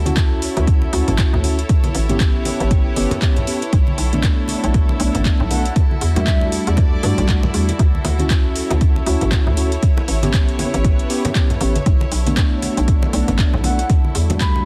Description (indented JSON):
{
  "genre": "deep house",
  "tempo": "118 BPM",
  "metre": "4/4",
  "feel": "swing 58% on 16ths",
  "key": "B minor",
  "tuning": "A4 = 439 Hz",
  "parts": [
    { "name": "soft string machine", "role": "sustained chords", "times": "0.0-14.7 s", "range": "G3 to D5", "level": "-34 LUFS", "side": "equal", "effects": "phaser, ensemble chorus, sidechain pumping" },
    { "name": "hollow knocking FM bass", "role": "bass", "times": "0.0-14.7 s", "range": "G1 to G2", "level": "-23 LUFS", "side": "equal", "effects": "sidechain pumping" },
    { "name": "rich chamber string section", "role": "texture", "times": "0.0-14.7 s", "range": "E4 to D5", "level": "-31 LUFS", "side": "equal", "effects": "sidechain pumping" },
    { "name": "mellow tine electric piano", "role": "stabs", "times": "0.1-14.7 s", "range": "G3 to G4", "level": "-26 LUFS", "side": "equal", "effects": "sidechain pumping, low-pass filter, dub echo" },
    { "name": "deep house drum kit", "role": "drums", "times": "0.1-14.5 s", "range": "handclaps, hi-hat", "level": "-29 LUFS", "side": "equal", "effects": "overdrive" },
    { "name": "congas", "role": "percussion", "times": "0.1-14.6 s", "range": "none", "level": "-28 LUFS", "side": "equal", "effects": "none" },
    { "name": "electronic kick drum", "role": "drums", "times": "0.2-14.5 s", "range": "none", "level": "-18 LUFS", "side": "equal", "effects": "overdrive" },
    { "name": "breathy mellow jazz flute", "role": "melody", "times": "5.5-6.5, 13.6-14.6 s", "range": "E5 to B5", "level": "-29 LUFS", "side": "equal", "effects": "digital delay" }
  ],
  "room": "digital ambience",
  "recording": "dense, heavily limited modern master, vinyl crackle",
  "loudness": "-17 LUFS",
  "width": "mono",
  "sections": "0.0-14.7 A section",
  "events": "none",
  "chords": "0.0 Dmaj9; 1.7 A9; 3.7 Bm7; 5.8 Em11; 7.8 Dmaj9; 9.8 A9; 11.9 Bm7; 13.9 Em11"
}